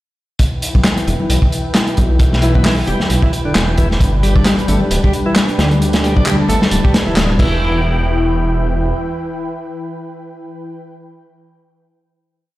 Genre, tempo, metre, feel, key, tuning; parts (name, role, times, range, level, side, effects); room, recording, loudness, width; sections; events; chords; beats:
breakbeat, breaks; 133 BPM; 4/4; swing 56% on 16ths; E minor pentatonic; A4 = 440 Hz
lush unison pad; sustained chords; 0.4-10.8 s; E3 to A5; -21 LUFS; left 1 dB; chorus, sidechain pumping
crunchy breakbeat drum kit; drums; 0.4-7.5 s; crash cymbal, hi-hat, kick drum, snare drum; -15 LUFS; equal
congas; percussion; 0.7-6.7 s; -22 LUFS; left 2 dB
electronic handclaps; drums; 0.8-7.3 s; -24 LUFS; equal
detuned saw bass; bass; 1.1-8.9 s; D1 to D2; -16 LUFS; equal
bright tonewheel organ; riff; 2.4-7.8 s; D3 to D4; -21 LUFS; equal; overdrive, slow rotary speaker, digital delay
light reverb; played on a big sound system in a bare room, stone room reverb; -12 LUFS; side -16 dB against mid
0.4-7.6 groove; 7.6-11.2 final hit
band accent 7.2
0.4 Em; 4.0 G; 7.4 Em
| 0.40 0.85 1.30 1.75 | 2.20 2.65 3.10 3.56 | 4.01 4.46 4.91 5.36 | 5.81 6.26 6.71 7.16 | 7.62 8.07 8.52 8.97 | 9.42 9.87 10.32 10.77